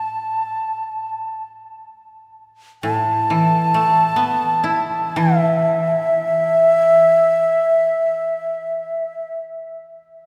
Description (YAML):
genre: japanese traditional, Japanese chamber music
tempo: free time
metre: none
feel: none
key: unclear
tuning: A4 = 440 Hz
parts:
  - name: mellow shakuhachi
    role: melody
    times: 0.0-9.4 s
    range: E5 to A5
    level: -19 LUFS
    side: equal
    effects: none
  - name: koto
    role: accompaniment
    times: 0.0-7.9 s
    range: A2 to E4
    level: -24 LUFS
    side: equal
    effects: none
room: wet cathedral reverb, RT60 4.6 s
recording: recorded in a church or concert hall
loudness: -18 LUFS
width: mono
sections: 0.0-9.6 A section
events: none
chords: none